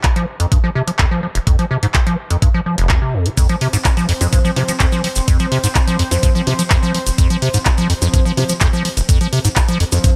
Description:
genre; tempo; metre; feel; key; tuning
acid house; 126 BPM; 4/4; straight; unclear; A4 = 439 Hz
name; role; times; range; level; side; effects
electronic kick drum; drums; 0.0-10.1 s; none; -17 LUFS; equal; none
punchy analog drum machine; drums; 0.0-10.1 s; handclaps, hi-hat; -24 LUFS; equal; none
acid bass, square; riff; 0.2-10.1 s; F1 to F3; -20 LUFS; equal; tube saturation, lush chorus, sidechain pumping
warm analog pad; sustained chords; 3.4-10.2 s; C4 to C5; -29 LUFS; equal; chorus, sidechain pumping
tube shaker; percussion; 3.4-10.1 s; none; -29 LUFS; equal; none
warm concert grand piano; stabs; 4.2-10.1 s; F3 to C5; -27 LUFS; equal; tape echo
room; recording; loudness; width
light reverb; none; -16 LUFS; mono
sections
0.0-10.2 A section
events
filter sweep on acid bass 0.0-10.2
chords
0.0 F5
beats
0.04 0.52 0.99 | 1.47 1.95 2.42 2.90 | 3.37 3.85 4.33 4.80 | 5.28 5.75 6.23 6.71 | 7.18 7.66 8.14 8.61 | 9.09 9.56 10.04

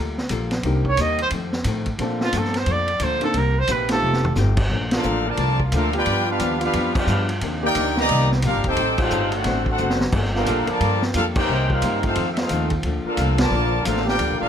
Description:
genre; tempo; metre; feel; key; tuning
jazz, big band swing; 177 BPM; 4/4; swing 63% on 8ths; Bb major; A4 = 440 Hz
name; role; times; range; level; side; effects
archtop guitar, miked and amplified; accompaniment; 0.0-14.4 s; F2 to A4; -30 LUFS; left 6 dB; none
upright bass; bass; 0.0-14.5 s; Eb1 to Bb2; -24 LUFS; equal; none
vintage drum kit; drums; 0.2-14.3 s; crash cymbal, hi-hat, kick drum, ride cymbal, snare drum, toms; -26 LUFS; equal; none
warm grand piano; accompaniment; 0.6-4.3 s; G3 to Bb4; -27 LUFS; equal; none
mellow trumpet; melody; 0.9-4.3 s; F4 to Eb5; -22 LUFS; right 3 dB; none
warm saxophone section; sustained chords; 4.7-14.5 s; D3 to G4; -32 LUFS; equal; none
clear trombone section; second line; 4.9-14.5 s; D3 to G4; -26 LUFS; right 1 dB; none
clear trumpet section; melody; 5.0-14.5 s; D4 to Bb5; -23 LUFS; left 1 dB; none
room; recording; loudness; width
light reverb; close, detailed microphones; -18 LUFS; side -8 dB against mid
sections
0.0-4.7 A section; 4.7-14.5 B section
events
trumpet solo 0.0-4.7; drum fill 4.0-4.4, 9.8-10.1; band accent 4.9, 6.9, 8.9, 11.3, 13.3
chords
0.0 Gm9; 0.6 Cm7; 1.3 F7; 2.0 Bbmaj7; 3.4 Cm7; 4.0 F9; 4.7 Bbmaj7; 6.1 G7; 7.4 Cm9; 8.8 Am7b5; 9.5 D7; 10.1 Gm9; 11.5 Cm7; 12.2 F7; 12.8 Bbmaj7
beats
0.30 | 0.64 0.98 1.32 1.66 | 2.00 2.33 2.67 3.01 | 3.35 3.69 4.03 4.37 | 4.71 5.04 5.38 5.72 | 6.06 6.40 6.74 7.08 | 7.42 7.76 8.10 8.44 | 8.77 9.11 9.45 9.79 | 10.13 10.47 10.81 11.15 | 11.49 11.82 12.16 12.50 | 12.84 13.18 13.52 13.86 | 14.20

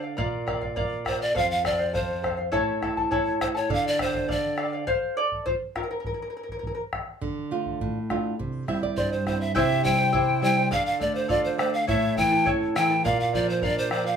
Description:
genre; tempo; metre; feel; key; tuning
andean folk, Andean ensemble; 102 BPM; 2/4; straight; D minor; A4 = 441 Hz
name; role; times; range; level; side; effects
charango; accompaniment; 0.0-6.8, 9.5-14.2 s; E4 to A5; -27 LUFS; left 1 dB; none
flamenco guitar; accompaniment; 0.0-4.8, 7.2-14.2 s; F2 to E5; -28 LUFS; right 3 dB; none
bombo; percussion; 0.2-14.0 s; none; -33 LUFS; left 1 dB; none
breathy pan flute; melody; 1.1-4.7, 9.0-14.2 s; C5 to G5; -25 LUFS; equal; plate reverb
room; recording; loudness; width
moderate studio reverb, RT60 0.5 s; small room ambience; -23 LUFS; side -7 dB against mid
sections
0.0-4.9 A section; 4.9-9.6 B section; 9.6-14.2 C section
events
charango solo 4.9-9.6; nylon-string guitar fill 8.4-9.6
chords
0.2 Bb; 1.4 F; 2.5 A; 3.7 Dm; 4.9 F; 6.0 N.C.; 7.2 Dm; 8.4 C; 10.7 Dm; 11.9 A; 13.0 Bb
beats
| 0.18 0.77 | 1.36 1.94 | 2.53 3.12 | 3.70 4.29 | 4.87 5.46 | 6.05 6.63 | 7.22 7.80 | 8.39 8.97 | 9.56 10.14 | 10.72 11.30 | 11.88 12.46 | 13.04 13.62

